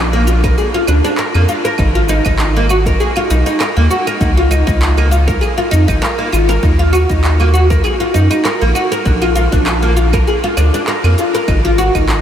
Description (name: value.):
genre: organic downtempo.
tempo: 99 BPM.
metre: 4/4.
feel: swing 55% on 16ths.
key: unclear.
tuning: A4 = 440 Hz.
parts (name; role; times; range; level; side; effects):
oud; arpeggios; 0.0-12.2 s; Bb3 to Bb4; -14 LUFS; equal; analog delay.
warm sub bass; bass; 0.0-12.2 s; Ab1 to Gb2; -13 LUFS; equal; sidechain pumping.
electronic cabasa, claves and handclaps; drums; 0.3-12.2 s; none; -22 LUFS; right 1 dB; overdrive, studio ambience.
electronic kick drum; drums; 0.4-12.1 s; none; -18 LUFS; equal; overdrive, studio ambience.
room: moderate huge ambient reverb, RT60 8.0 s.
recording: dreamy mix soaked in reverb.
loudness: -11 LUFS.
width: side -9 dB against mid.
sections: 0.0-12.2 A section.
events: none.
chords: 0.0 Bb; 1.8 Ab5; 4.2 Dbadd9; 6.6 Ebm; 9.1 Bb; 11.5 Ab5.